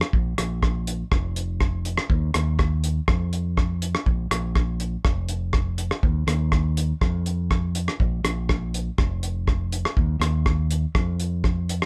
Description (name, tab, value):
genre	highlife guitar band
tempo	122 BPM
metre	4/4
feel	straight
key	unclear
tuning	A4 = 439 Hz
part	cloth-damped thuddy drum kit	drums	0.0-11.9 s	hi-hat, kick drum, rim click	-26 LUFS	equal	none
part	fingered electric bass	bass	0.1-11.8 s	F1 to F2	-27 LUFS	equal	none
room	light reverb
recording	band playing live in one room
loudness	-24 LUFS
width	mono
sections	0.0-11.9 A section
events	none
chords	none